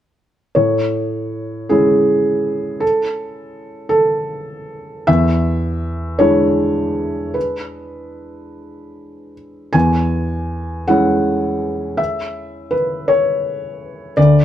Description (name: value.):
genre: neoclassical minimalist piano.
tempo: 50-56 BPM (dotted quarters).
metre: 6/8.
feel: rubato.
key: A major.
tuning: A4 = 442 Hz.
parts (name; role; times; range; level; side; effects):
felt-muted upright piano; solo; 0.5-14.4 s; D2 to G#5; -15 LUFS; equal; none.
room: moderate studio reverb, RT60 0.8 s.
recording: band playing live in one room.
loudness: -15 LUFS.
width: side -11 dB against mid.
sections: 0.6-14.4 A section.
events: none.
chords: 0.6 Amaj7; 5.1 E7; 9.7 C#m/E.